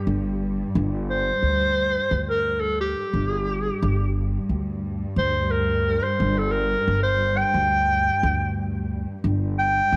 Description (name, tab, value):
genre	Turkish makam ensemble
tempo	177 BPM (eighths)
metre	9/8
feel	straight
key	G makam ussak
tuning	A4 = 440 Hz
part	bright clarinet	melody	0.0-10.0 s	G4 to G5	-25 LUFS	equal	none
part	dark symphonic cello section	drone	0.0-10.0 s	G2	-31 LUFS	equal	none
part	upright bass	bass	0.1-10.0 s	G1 to D2	-28 LUFS	equal	none
room	light reverb, small room ambience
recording	none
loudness	-23 LUFS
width	mono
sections	0.0-10.0 A section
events	none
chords	none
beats	| 0.08 0.42 0.76 1.10 1.44 1.78 2.12 2.46 2.79 | 3.13 3.47 3.81 4.15 4.49 4.83 5.17 5.51 5.85 | 6.19 6.53 6.87 7.21 7.54 7.88 8.22 8.56 8.90 | 9.24 9.58 9.92